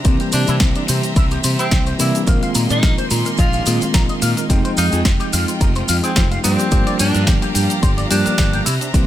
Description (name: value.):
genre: nu-disco, nu disco.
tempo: 108 BPM.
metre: 4/4.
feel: swing 54% on 16ths.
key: unclear.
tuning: A4 = 440 Hz.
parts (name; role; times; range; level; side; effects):
bell-like tine electric piano; accompaniment; 0.0-9.1 s; Eb3 to G5; -21 LUFS; equal; medium stereo tremolo, sidechain pumping, ping-pong delay.
bright studio violin section; sustained chords; 0.0-9.1 s; Bb3 to C6; -28 LUFS; equal; sidechain pumping.
house drum kit; drums; 0.0-9.1 s; cabasa, hi-hat, snare drum; -22 LUFS; left 1 dB; none.
maracas; percussion; 0.0-9.1 s; none; -29 LUFS; right 3 dB; none.
electric guitar with an envelope filter; riff; 0.1-9.1 s; C4 to Bb5; -27 LUFS; left 3 dB; lush chorus, ping-pong delay.
fuzz fingered electric bass; bass; 0.1-9.0 s; F1 to C3; -21 LUFS; equal; overdrive, sidechain pumping.
electronic kick drum; drums; 0.1-9.1 s; none; -16 LUFS; equal; none.
clear tenor saxophone; melody; 0.3-8.7 s; C4 to F4; -25 LUFS; equal; ping-pong delay.
room: little or no reverb.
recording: none.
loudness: -14 LUFS.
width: side -12 dB against mid.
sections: 0.0-9.1 A section.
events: none.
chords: 0.0 C7; 2.3 Bb9sus4; 4.5 Fm9; 6.4 Gm7.